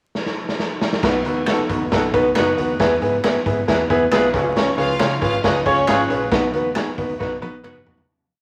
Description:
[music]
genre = uptempo 1960s-style soul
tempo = 136 BPM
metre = 4/4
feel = straight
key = unclear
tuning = A4 = 439 Hz
[part]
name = raw garage drum kit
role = drums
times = 0.2-8.1 s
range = crash cymbal, hi-hat, kick drum, snare drum, toms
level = -24 LUFS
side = equal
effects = none
[part]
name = clear grand piano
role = accompaniment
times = 1.0-8.0 s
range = B3 to C#5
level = -21 LUFS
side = equal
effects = none
[part]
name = vintage muted fingered electric bass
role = bass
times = 1.0-8.0 s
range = F#1 to C#3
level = -32 LUFS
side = equal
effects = none
[part]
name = finger snaps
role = percussion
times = 1.5-7.7 s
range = none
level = -33 LUFS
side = equal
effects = none
[part]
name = clear horn section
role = second line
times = 1.9-8.1 s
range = D#4 to B4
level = -31 LUFS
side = equal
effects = none
[part]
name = rich studio string section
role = second line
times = 4.6-6.1 s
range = C#4 to E#5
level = -26 LUFS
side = equal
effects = none
[sound]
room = wet large studio reverb, RT60 1.2 s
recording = vinyl crackle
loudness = -19 LUFS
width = mono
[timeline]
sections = 0.0-1.0 pickup bar; 1.0-8.1 pre-chorus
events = drum fill 0.1-1.0, 7.2-8.1; fade-out 6.3-8.1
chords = 0.0 N.C.; 1.0 B; 2.8 E; 4.3 C#7; 6.3 B

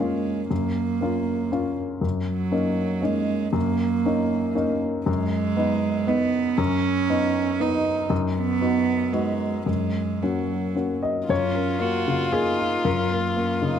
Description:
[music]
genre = neoclassical piano and strings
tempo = 118 BPM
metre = 3/4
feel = rubato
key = F# major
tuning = A4 = 441 Hz
[part]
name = warm cello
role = second line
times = 0.0-13.8 s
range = F#3 to F#4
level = -26 LUFS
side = right 7 dB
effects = none
[part]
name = warm baby grand piano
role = accompaniment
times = 0.0-13.8 s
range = F#2 to D#5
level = -24 LUFS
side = left 3 dB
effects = none
[part]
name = dark violin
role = melody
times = 11.3-13.8 s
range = E#4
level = -26 LUFS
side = left 2 dB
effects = none
[sound]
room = light reverb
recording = close, detailed microphones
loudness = -21 LUFS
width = side -8 dB against mid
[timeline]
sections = 0.0-11.3 A section; 11.3-13.8 B section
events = none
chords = 0.0 F#maj7; 2.0 D#m7/F#; 5.1 B/F#; 9.7 F#; 11.3 F#maj7

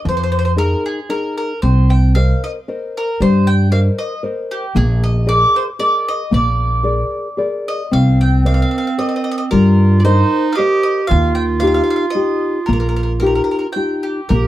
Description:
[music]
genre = italian folk, Italian serenade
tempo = 114 BPM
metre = 3/4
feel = rubato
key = Eb major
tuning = A4 = 436 Hz
[part]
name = nylon-string guitar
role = accompaniment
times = 0.0-14.5 s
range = Eb3 to Eb5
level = -20 LUFS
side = left 3 dB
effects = none
[part]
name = bowl-back mandolin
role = melody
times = 0.1-14.5 s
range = G4 to G5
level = -20 LUFS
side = equal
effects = none
[part]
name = upright bass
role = bass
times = 0.1-14.5 s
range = Bb1 to G2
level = -14 LUFS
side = equal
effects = none
[part]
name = bright clarinet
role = second line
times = 7.9-14.5 s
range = C4 to G4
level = -19 LUFS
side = right 4 dB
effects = none
[sound]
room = small room ambience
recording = dry, close 1970s-style studio recording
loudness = -13 LUFS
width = side -14 dB against mid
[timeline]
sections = 0.0-14.5 A section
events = none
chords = 0.0 Bb7sus4; 1.6 Cm7; 4.8 Bb7sus4; 6.3 Bb7; 7.9 Cm7; 11.1 Ebadd9

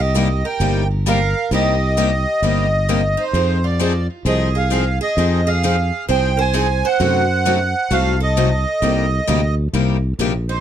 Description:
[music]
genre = acoustic string swing (jazz manouche)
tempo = 131 BPM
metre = 4/4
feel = swing 64% on 8ths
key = C minor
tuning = A4 = 440 Hz
[part]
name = accordion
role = melody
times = 0.0-10.6 s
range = C5 to Ab5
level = -20 LUFS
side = right 2 dB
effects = light tremolo tuning
[part]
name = picked steel-string acoustic guitar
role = second line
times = 0.0-10.6 s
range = Eb4 to C5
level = -26 LUFS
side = right 8 dB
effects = tape echo
[part]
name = sustaining fretless electric bass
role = bass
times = 0.0-10.6 s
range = G1 to F#2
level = -18 LUFS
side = equal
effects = none
[part]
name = picked steel-string acoustic guitar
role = accompaniment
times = 0.1-10.3 s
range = C3 to A4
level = -25 LUFS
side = right 4 dB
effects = none
[part]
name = picked steel-string acoustic guitar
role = accompaniment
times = 0.2-10.3 s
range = C3 to Ab4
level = -22 LUFS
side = left 10 dB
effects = none
[sound]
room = light reverb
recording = close, detailed microphones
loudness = -15 LUFS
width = side -10 dB against mid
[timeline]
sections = 0.0-10.6 A section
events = none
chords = 0.0 Cm7; 3.3 Fm7; 7.0 F#dim7; 8.8 Cm7

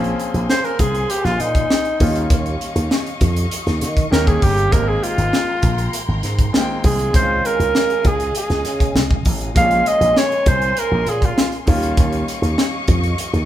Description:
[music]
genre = polished 1980s jazz-funk pop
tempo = 99 BPM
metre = 4/4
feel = straight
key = unclear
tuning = A4 = 440 Hz
[part]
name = clear concert grand piano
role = accompaniment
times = 0.0-13.5 s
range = C3 to G5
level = -27 LUFS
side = left 1 dB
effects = none
[part]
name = warm studio string section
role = sustained chords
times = 0.0-13.5 s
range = Db4 to Db6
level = -29 LUFS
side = left 3 dB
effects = none
[part]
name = slap bass with an envelope filter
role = bass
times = 0.0-13.5 s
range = G1 to Eb3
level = -21 LUFS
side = equal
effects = none
[part]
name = crisp fusion drum kit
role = drums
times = 0.0-13.5 s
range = hi-hat, kick drum, snare drum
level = -19 LUFS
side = equal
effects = none
[part]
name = breathy alto saxophone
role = melody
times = 0.5-11.5 s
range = Eb4 to F5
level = -18 LUFS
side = right 1 dB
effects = none
[sound]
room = moderate large studio reverb, RT60 1.2 s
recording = band playing live in one room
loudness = -15 LUFS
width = side -12 dB against mid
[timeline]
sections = 0.0-13.5 A section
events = alto saxophone solo 0.0-13.5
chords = 0.0 Bbm9; 2.0 Eb9; 4.1 Eb7; 4.7 Abmaj9; 7.1 Dbmaj9; 9.6 Bbm9; 11.7 Eb9

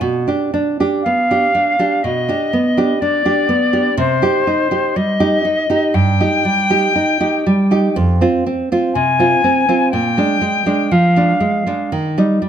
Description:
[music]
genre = romantic duo for flute and classical guitar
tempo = 61 BPM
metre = 4/4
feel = rubato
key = C minor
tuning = A4 = 440 Hz
[part]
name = nylon-string guitar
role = accompaniment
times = 0.0-12.5 s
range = F2 to G4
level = -15 LUFS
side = right 2 dB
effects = none
[part]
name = silver concert flute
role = melody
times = 1.0-11.9 s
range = C5 to Ab5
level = -16 LUFS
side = left 2 dB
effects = none
[sound]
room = moderate recital hall reverb, RT60 1.7 s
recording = close, detailed microphones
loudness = -13 LUFS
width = side -9 dB against mid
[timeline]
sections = 0.0-12.5 A section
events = none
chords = 0.0 G7/B; 4.0 Cm; 8.0 Fm; 9.9 Bb7 (rootless); 11.9 Eb

